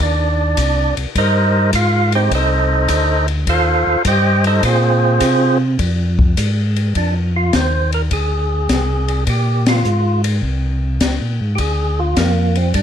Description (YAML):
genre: soul jazz organ trio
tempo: 104 BPM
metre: 4/4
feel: swing 68% on 8ths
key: Bb mixolydian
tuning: A4 = 442 Hz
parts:
  - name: percussive tonewheel organ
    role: melody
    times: 0.0-12.8 s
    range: Bb3 to G5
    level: -17 LUFS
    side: right 2 dB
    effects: slow rotary speaker, overdrive
  - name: tonewheel organ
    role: bass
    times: 0.0-12.8 s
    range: C2 to C3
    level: -16 LUFS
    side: equal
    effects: chorus vibrato
  - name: open jazz drum kit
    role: drums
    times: 0.0-12.8 s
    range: hi-hat, kick drum, ride cymbal, snare drum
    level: -21 LUFS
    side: left 2 dB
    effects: none
room: light reverb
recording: dark, warm production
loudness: -14 LUFS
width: side -8 dB against mid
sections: 0.0-7.0 A section; 7.0-12.8 B section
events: tonewheel organ solo 0.0-7.0; band accent 9.6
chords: 0.0 Cm7; 2.3 F9; 4.6 Bbsus2; 7.0 Bb9